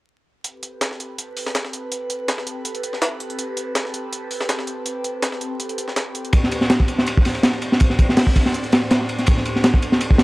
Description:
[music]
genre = drum and bass, jungle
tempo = 163 BPM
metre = 4/4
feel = straight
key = A minor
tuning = A4 = 440 Hz
[part]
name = airy breathy pad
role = sustained chords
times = 0.6-10.2 s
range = A2 to C5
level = -28 LUFS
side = equal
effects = chorus, phaser
[part]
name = breakbeat sampler-style drum kit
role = drums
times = 0.4-10.2 s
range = hi-hat, snare drum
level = -25 LUFS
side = equal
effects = high-pass filter on hats, high-pass filter on snare
[part]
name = crunchy breakbeat drum kit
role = drums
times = 6.3-10.2 s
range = hi-hat, kick drum, ride cymbal, snare drum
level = -15 LUFS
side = equal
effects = none
[sound]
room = small room ambience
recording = dry, gritty hardware recording, vinyl crackle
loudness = -18 LUFS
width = side -21 dB against mid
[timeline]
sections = 0.4-10.2 A section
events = none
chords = 0.4 Am9; 6.3 Gsus4/A

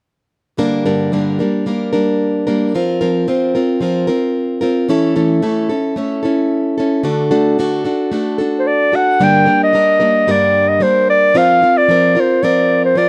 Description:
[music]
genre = folk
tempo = 111 BPM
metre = 4/4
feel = straight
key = G minor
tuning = A4 = 440 Hz
[part]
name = picked plugged-in steel-string acoustic guitar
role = accompaniment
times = 0.6-13.1 s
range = G2 to Bb4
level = -17 LUFS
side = equal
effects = none
[part]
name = warm clarinet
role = melody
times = 8.6-13.1 s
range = C5 to G5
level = -14 LUFS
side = equal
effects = none
[sound]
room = small room ambience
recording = dry, close 1970s-style studio recording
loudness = -15 LUFS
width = mono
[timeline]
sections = 0.6-9.2 A section; 9.2-13.1 B section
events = none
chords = 0.6 Gm; 2.7 Fsus4; 4.9 A/E; 7.1 D; 9.2 Gm; 11.4 Fsus4

